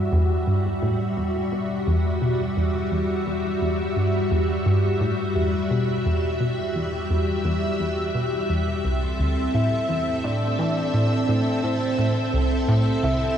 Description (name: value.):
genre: ambient, sequencer-driven space music.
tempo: 86 BPM.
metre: 4/4.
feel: straight.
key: unclear.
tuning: A4 = 439 Hz.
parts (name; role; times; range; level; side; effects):
string machine, full ensemble; sustained chords; 0.0-13.4 s; G3 to E5; -24 LUFS; equal; ensemble chorus.
analog pluck; riff; 0.0-13.3 s; C2 to E3; -23 LUFS; equal; chorus, cassette tape, ping-pong delay.
soft octave-layered synth lead; melody; 9.5-13.4 s; C5 to E5; -27 LUFS; left 1 dB; chorus, ping-pong delay.
room: wet huge ambient reverb, RT60 7.8 s.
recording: none.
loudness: -21 LUFS.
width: side -9 dB against mid.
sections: 0.0-13.4 A section.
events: none.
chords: 0.0 Emadd9; 8.8 Am.